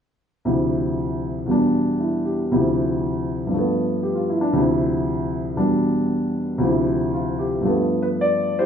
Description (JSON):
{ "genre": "solo jazz", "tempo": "116 BPM", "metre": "4/4", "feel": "swing 69% on 8ths, rubato", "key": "unclear", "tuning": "A4 = 440 Hz", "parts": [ { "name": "warm upright piano", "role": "solo", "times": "0.5-8.7 s", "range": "D2 to D5", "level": "-19 LUFS", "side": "equal", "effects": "none" } ], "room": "wet large studio reverb, RT60 1.1 s", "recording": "band playing live in one room", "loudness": "-19 LUFS", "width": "side -8 dB against mid", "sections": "0.5-8.7 A section", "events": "none", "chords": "0.5 Dm9; 1.5 Em7; 2.5 Dm9; 3.5 G9; 4.5 Dm9; 5.6 Em7; 6.6 Dm9; 7.7 G9", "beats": "| 0.45 0.98 1.50 2.01 | 2.52 3.03 3.53 4.04 | 4.54 5.05 5.57 6.08 | 6.60 7.12 7.66 8.21" }